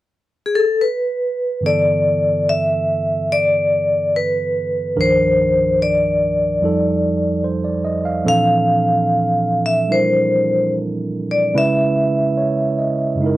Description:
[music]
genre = jazz ballad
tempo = 73 BPM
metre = 4/4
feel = swing 69% on 8ths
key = unclear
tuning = A4 = 441 Hz
[part]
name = vibraphone with medium hard mallets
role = melody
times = 0.5-13.2 s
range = Ab4 to F5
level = -16 LUFS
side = left 1 dB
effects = none
[part]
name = barky tine electric piano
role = accompaniment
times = 1.6-13.4 s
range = C2 to F5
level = -19 LUFS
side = right 2 dB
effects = none
[sound]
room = light reverb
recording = dry, close 1970s-style studio recording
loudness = -15 LUFS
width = side -16 dB against mid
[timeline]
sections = 0.0-1.6 A section; 1.6-13.4 B section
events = none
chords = 0.0 N.C.; 1.6 G69; 5.0 Cm11; 6.6 F7; 8.3 Bbmaj9#11; 11.5 C#m7

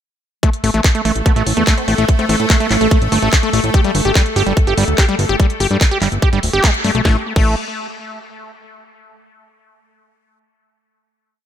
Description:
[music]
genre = psychedelic trance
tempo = 145 BPM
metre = 4/4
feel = straight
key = A minor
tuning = A4 = 440 Hz
[part]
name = evolving wavetable pad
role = sustained chords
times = 1.0-7.1 s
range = A3 to A4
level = -22 LUFS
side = right 1 dB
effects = ensemble chorus, built-in reverb, sidechain pumping
[part]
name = overdriven acid bass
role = riff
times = 0.4-7.6 s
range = G3 to G4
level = -19 LUFS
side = moving between left 7 dB and right 7 dB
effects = distortion, auto-pan, sidechain pumping, dub echo
[part]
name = electronic kick drum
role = drums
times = 0.4-7.4 s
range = none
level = -13 LUFS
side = equal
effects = none
[part]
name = garage drum kit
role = drums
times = 0.4-7.4 s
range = crash cymbal, handclaps, hi-hat, snare drum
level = -21 LUFS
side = equal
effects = none
[part]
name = fat analog bass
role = bass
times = 0.6-7.6 s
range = D1 to A2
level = -18 LUFS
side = equal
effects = tube saturation
[part]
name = resonant blip pluck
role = second line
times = 1.3-3.5 s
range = A3 to C4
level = -30 LUFS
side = equal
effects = none
[sound]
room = light reverb, digital ambience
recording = none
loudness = -12 LUFS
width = side -10 dB against mid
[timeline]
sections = 0.4-7.1 groove; 7.1-8.7 final chord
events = band accent 6.6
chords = 0.4 A5; 3.7 G5; 7.1 N.C.

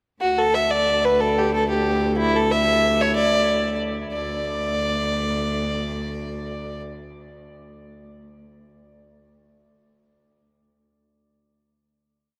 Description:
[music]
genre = celtic folk, Celtic jig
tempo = 123 BPM (dotted quarters)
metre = 6/8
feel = straight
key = unclear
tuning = A4 = 440 Hz
[part]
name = rich fiddle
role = melody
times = 0.2-6.8 s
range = E4 to E5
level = -23 LUFS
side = equal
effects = none
[part]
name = clear cello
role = drone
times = 0.2-6.8 s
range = D2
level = -29 LUFS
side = equal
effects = none
[sound]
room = wet cathedral reverb, RT60 6.5 s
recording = in a vast, echoing space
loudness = -22 LUFS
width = mono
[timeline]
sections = 0.2-4.1 A section; 4.1-6.0 final note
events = none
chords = none

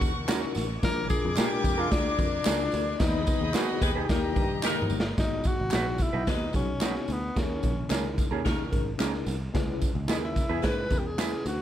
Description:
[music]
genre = uptempo 1960s-style soul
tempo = 110 BPM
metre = 4/4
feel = straight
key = G# minor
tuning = A4 = 444 Hz
[part]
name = warm studio string section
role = second line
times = 0.0-5.2 s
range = G4 to G#6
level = -34 LUFS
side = left 2 dB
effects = none
[part]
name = mellow tine electric piano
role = accompaniment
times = 0.0-11.5 s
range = G#2 to B4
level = -34 LUFS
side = left 4 dB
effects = fast stereo tremolo
[part]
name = picked electric bass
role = bass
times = 0.0-11.6 s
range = G1 to D#3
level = -33 LUFS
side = equal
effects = none
[part]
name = raw garage drum kit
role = drums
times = 0.0-11.6 s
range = hi-hat, kick drum, snare drum, toms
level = -29 LUFS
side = equal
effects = none
[part]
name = tambourine and handclaps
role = percussion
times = 0.0-11.6 s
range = none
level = -39 LUFS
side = right 1 dB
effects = none
[part]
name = electric guitar through a small old amp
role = stabs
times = 0.3-11.3 s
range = C#4 to B4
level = -34 LUFS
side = right 8 dB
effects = none
[part]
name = warm tenor saxophone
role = melody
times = 0.8-11.6 s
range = B3 to B4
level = -31 LUFS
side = left 3 dB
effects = none
[part]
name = edgy saxophone section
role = second line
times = 3.8-11.0 s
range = D#3 to B4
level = -35 LUFS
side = left 1 dB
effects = none
[sound]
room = little or no reverb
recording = none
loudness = -25 LUFS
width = side -11 dB against mid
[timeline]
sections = 0.0-5.2 A section; 5.2-11.6 B section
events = band accent 3.0-5.2; drum fill 4.6-5.2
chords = 0.0 D#m7; 0.8 A#7; 3.0 G#m/D#; 4.1 D#; 5.2 G#m7; 7.4 D#7sus4; 9.5 C#m7

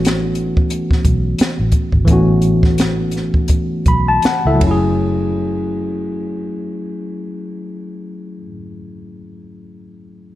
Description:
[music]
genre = R&B, neo-soul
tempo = 77-90 BPM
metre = 4/4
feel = swing 56% on 16ths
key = F# minor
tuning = A4 = 440 Hz
[part]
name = tine electric piano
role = accompaniment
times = 0.0-10.4 s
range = E3 to B5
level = -19 LUFS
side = left 1 dB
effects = none
[part]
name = vintage muted fingered electric bass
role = bass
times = 0.0-8.4 s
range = F#1 to C#2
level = -19 LUFS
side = equal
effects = none
[part]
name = compact cocktail drum kit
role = drums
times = 0.0-4.8 s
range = hi-hat, kick drum, ride cymbal, snare drum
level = -16 LUFS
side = equal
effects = none
[sound]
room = light reverb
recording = none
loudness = -14 LUFS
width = side -15 dB against mid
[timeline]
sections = 0.0-5.0 A section; 5.0-8.1 B section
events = slowing down 0.0-5.0; tine electric piano fill 3.5-5.0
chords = 0.0 A69; 4.6 F#m9

